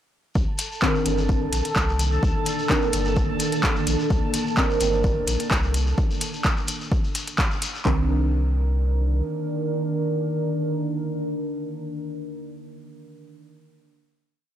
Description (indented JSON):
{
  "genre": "dub techno",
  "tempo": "128 BPM",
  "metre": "4/4",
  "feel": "straight",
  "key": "C dorian",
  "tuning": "A4 = 442 Hz",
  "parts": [
    { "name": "deep dark ambient pad", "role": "sustained chords", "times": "1.6-11.8 s", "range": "Eb3 to Bb4", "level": "-28 LUFS", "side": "right 1 dB", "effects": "chorus, built-in reverb, sidechain pumping" },
    { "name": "warm sub bass", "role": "bass", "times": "0.4-9.2 s", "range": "G1 to C2", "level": "-24 LUFS", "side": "equal", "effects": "tube saturation, sidechain pumping" },
    { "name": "deep house drum kit", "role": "drums", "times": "0.4-8.0 s", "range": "handclaps, kick drum", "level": "-24 LUFS", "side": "equal", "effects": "overdrive, studio reverb" },
    { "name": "shekere", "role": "percussion", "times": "0.4-7.8 s", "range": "none", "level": "-34 LUFS", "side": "left 4 dB", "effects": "none" },
    { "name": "bubbling stepped-filter texture", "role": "texture", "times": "0.4-6.0 s", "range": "A4 to A5", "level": "-31 LUFS", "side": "left 1 dB", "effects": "chorus, built-in reverb, sidechain pumping" },
    { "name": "deep house drum kit", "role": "drums", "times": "0.6-7.7 s", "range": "handclaps, hi-hat", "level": "-27 LUFS", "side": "equal", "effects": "overdrive, studio reverb" },
    { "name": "deep mellow chord stab", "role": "stabs", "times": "0.8-11.8 s", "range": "Eb3 to Bb4", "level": "-27 LUFS", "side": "right 1 dB", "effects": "chorus, phaser, vintage 12-bit sampler grit, sidechain pumping, dub echo" }
  ],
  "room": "digital ambience",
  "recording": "dry, gritty hardware recording, transformer saturation",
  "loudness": "-21 LUFS",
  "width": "side -11 dB against mid",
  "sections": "0.4-7.9 groove; 7.9-11.6 final chord",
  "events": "band accent 7.4",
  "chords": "0.4 Cm9"
}